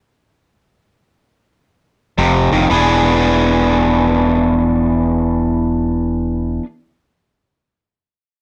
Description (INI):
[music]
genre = electric blues shuffle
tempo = free time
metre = none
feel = none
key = E mixolydian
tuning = A4 = 439 Hz
[part]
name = crunchy overdriven guitar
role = riff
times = 2.2-6.7 s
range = F2 to G#4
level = -16 LUFS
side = equal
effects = none
[part]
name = fingered electric bass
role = bass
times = 2.2-6.6 s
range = E1 to F1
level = -22 LUFS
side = equal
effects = none
[sound]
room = light reverb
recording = none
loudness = -15 LUFS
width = mono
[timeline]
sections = 0.0-2.7 A section; 2.7-7.0 B section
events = slowing down 0.0-2.7; stop 0.0-2.2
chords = 0.0 N.C.; 2.2 F5; 2.7 E7